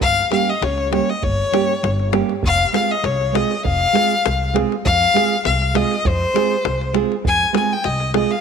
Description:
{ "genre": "balkan folk, Balkan wedding band", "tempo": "100 BPM", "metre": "2/4", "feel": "swing 54% on 16ths", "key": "F minor", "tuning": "A4 = 440 Hz", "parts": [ { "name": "clear violin", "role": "melody", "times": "0.0-8.4 s", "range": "C5 to Ab5", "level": "-18 LUFS", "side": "left 4 dB", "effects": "none" }, { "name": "upright bass", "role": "bass", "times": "0.0-8.2 s", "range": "F1 to F2", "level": "-23 LUFS", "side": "left 1 dB", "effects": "none" }, { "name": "davul", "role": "percussion", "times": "0.0-8.4 s", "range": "none", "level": "-25 LUFS", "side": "left 3 dB", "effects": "none" }, { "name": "nylon-string guitar", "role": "accompaniment", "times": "0.3-8.3 s", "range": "G3 to Ab4", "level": "-21 LUFS", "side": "right 11 dB", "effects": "none" } ], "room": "moderate plate reverb, RT60 2.8 s", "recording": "1960s-style stereo", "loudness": "-16 LUFS", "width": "side -6 dB against mid", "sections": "0.0-4.8 A section; 4.8-8.4 A section", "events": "none", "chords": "0.0 Gdim; 2.4 Fm", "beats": "| 0.02 0.62 | 1.23 1.83 | 2.44 3.04 | 3.65 4.25 | 4.85 5.45 | 6.05 6.65 | 7.25 7.85" }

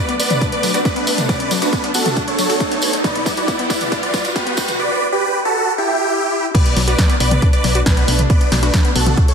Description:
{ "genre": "uplifting trance", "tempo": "137 BPM", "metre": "4/4", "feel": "straight", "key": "B minor", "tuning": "A4 = 440 Hz", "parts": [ { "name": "big supersaw lead", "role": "melody", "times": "0.0-9.3 s", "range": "D4 to D5", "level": "-19 LUFS", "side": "right 1 dB", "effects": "phaser, cassette tape, sidechain pumping, dub echo" }, { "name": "lush unison pad", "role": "sustained chords", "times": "0.0-9.3 s", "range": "E3 to F#5", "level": "-28 LUFS", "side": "equal", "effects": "chorus, sidechain pumping" }, { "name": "wide unison pluck", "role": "arpeggios", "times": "0.0-9.2 s", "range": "F#3 to F#4", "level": "-26 LUFS", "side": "left 4 dB", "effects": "sidechain pumping, dub echo" }, { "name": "riser", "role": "sound effects", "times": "0.0-4.8 s", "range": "none", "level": "-24 LUFS", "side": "right 1 dB", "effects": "none" }, { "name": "punchy analog drum machine", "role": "drums", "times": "0.1-9.3 s", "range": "crash cymbal, hi-hat, snare drum, toms", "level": "-22 LUFS", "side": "left 1 dB", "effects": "none" }, { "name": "solid FM bass", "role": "bass", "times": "0.2-9.1 s", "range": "B1 to E2", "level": "-19 LUFS", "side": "equal", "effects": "sidechain pumping, high-pass filter" }, { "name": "tambourine", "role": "percussion", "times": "0.2-4.8 s", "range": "none", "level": "-28 LUFS", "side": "right 3 dB", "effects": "none" }, { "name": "electronic kick drum", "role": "drums", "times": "0.4-9.3 s", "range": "none", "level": "-17 LUFS", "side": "equal", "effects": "none" } ], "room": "moderate lush hall reverb, RT60 2.2 s", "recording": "dense, heavily limited modern master, high-pass filter", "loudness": "-14 LUFS", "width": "side -6 dB against mid", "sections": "0.0-6.5 A section; 6.5-9.3 B section", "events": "build-up 0.0-6.5; drum fill 0.0-4.8; riser 0.0-4.8; filter sweep 0.0-6.5; drop 6.5-9.3", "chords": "0.0 Bm7; 3.0 Em7; 6.5 Bm7", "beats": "0.42 0.85 | 1.29 1.73 2.17 2.60 | 3.04 3.48 3.92 4.36 | 4.79 5.23 5.67 6.11 | 6.55 6.99 7.42 7.86 | 8.30 8.74 9.18" }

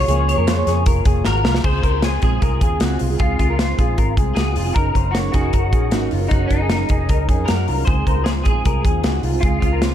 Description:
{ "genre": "jangly indie pop", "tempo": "154 BPM", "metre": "4/4", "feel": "straight", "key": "Db major", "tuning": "A4 = 438 Hz", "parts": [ { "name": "electric guitar at the edge of break-up", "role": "melody", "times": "0.0-9.9 s", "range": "Eb4 to Db5", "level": "-24 LUFS", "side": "left 1 dB", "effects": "ensemble chorus, tape echo" }, { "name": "fingerpicked plugged-in steel-string acoustic guitar", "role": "accompaniment", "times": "0.0-9.9 s", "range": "Db3 to Bb4", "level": "-27 LUFS", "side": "right 9 dB", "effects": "analog chorus" }, { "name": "hollow soft pad", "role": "sustained chords", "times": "0.1-9.9 s", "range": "Db3 to Bb4", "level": "-30 LUFS", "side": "equal", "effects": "chorus" }, { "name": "electric guitar through a small old amp", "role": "arpeggios", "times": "0.0-9.9 s", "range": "F4 to Db5", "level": "-26 LUFS", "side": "left 5 dB", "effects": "wide subtle chorus, tape echo" }, { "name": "vintage muted fingered electric bass", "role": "bass", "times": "0.0-9.9 s", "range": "F1 to Gb2", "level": "-21 LUFS", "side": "equal", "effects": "none" }, { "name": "modern studio drum kit", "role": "drums", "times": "0.1-9.9 s", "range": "crash cymbal, hi-hat, kick drum, snare drum", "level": "-19 LUFS", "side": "equal", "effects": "none" }, { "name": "group handclap", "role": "percussion", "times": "0.5-1.3 s", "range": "none", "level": "-36 LUFS", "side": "right 10 dB", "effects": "none" } ], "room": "light reverb, studio reverb", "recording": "none", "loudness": "-15 LUFS", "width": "side -10 dB against mid", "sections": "0.0-1.6 A section; 1.6-9.9 B section", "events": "drum fill 1.3-1.6", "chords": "0.0 Bbm7; 1.6 Dbmaj7", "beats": "| 0.09 0.48 0.87 1.26 | 1.65 2.04 2.42 2.81 | 3.20 3.59 3.98 4.37 | 4.76 5.15 5.54 5.93 | 6.32 6.71 7.09 7.48 | 7.87 8.26 8.65 9.04 | 9.43 9.81" }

